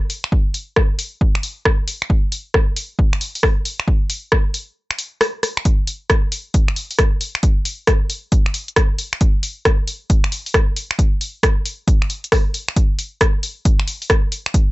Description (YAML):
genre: UK garage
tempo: 135 BPM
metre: 4/4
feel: swing 64% on 16ths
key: none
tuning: none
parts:
  - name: punchy analog drum machine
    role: drums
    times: 0.1-14.7 s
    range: finger snaps, hi-hat, rim click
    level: -20 LUFS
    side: equal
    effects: none
  - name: electronic kick drum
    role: drums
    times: 0.3-14.7 s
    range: none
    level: -16 LUFS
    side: equal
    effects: none
room: little or no reverb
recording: nothing above 8.0 kHz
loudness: -16 LUFS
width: side -19 dB against mid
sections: 0.0-14.7 A section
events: break 4.8-5.7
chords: none